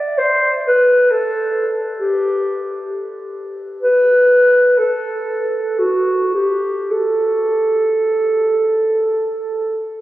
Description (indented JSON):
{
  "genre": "classical, free, expressive piece for unaccompanied clarinet",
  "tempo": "39-68 BPM",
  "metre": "3/4",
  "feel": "rubato",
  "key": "A minor",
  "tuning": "A4 = 440 Hz",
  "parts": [
    { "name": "mellow clarinet", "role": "solo", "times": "0.0-9.9 s", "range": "F#4 to D5", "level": "-14 LUFS", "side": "equal", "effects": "none" }
  ],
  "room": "wet cathedral reverb, RT60 5.1 s",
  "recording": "recorded on a phone in the room, club reverb, compression",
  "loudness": "-14 LUFS",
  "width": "side -15 dB against mid",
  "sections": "0.0-10.0 A section",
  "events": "none",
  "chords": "none",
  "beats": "0.18 | 1.12 2.00 2.90 | 3.82 4.78 5.79 | 6.92 8.14 9.29"
}